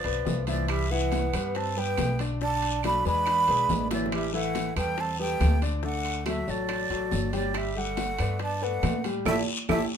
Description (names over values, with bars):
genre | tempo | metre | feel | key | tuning
Afro-Cuban jazz | 140 BPM | 4/4 | straight | G major | A4 = 441 Hz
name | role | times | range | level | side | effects
breathy jazz flute | melody | 0.0-9.8 s | D5 to B5 | -29 LUFS | right 2 dB | none
mellow tenor saxophone | second line | 0.0-9.8 s | F3 to D4 | -34 LUFS | right 4 dB | none
warm concert grand piano | accompaniment | 0.0-9.8 s | D3 to G5 | -32 LUFS | left 4 dB | none
upright bass | bass | 0.0-9.8 s | G1 to A2 | -30 LUFS | equal | none
timbales | percussion | 0.0-9.8 s | none | -39 LUFS | right 5 dB | none
bongos | percussion | 0.1-9.8 s | none | -35 LUFS | left 4 dB | none
congas | percussion | 0.1-9.8 s | none | -36 LUFS | right 2 dB | none
guiro | percussion | 0.3-9.8 s | none | -40 LUFS | left 4 dB | none
claves | percussion | 0.7-9.8 s | none | -38 LUFS | right 7 dB | none
room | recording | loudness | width
light reverb | minimal, uncompressed stereo recording | -24 LUFS | side -8 dB against mid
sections
0.0-10.0 A section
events
drum fill 3.9; band accent 9.3-10.0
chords
0.0 G7 (rootless); 0.7 Cmaj7; 2.4 Bm7; 3.3 E7; 4.1 Asus2; 5.8 D; 7.5 Gmaj9; 9.3 A5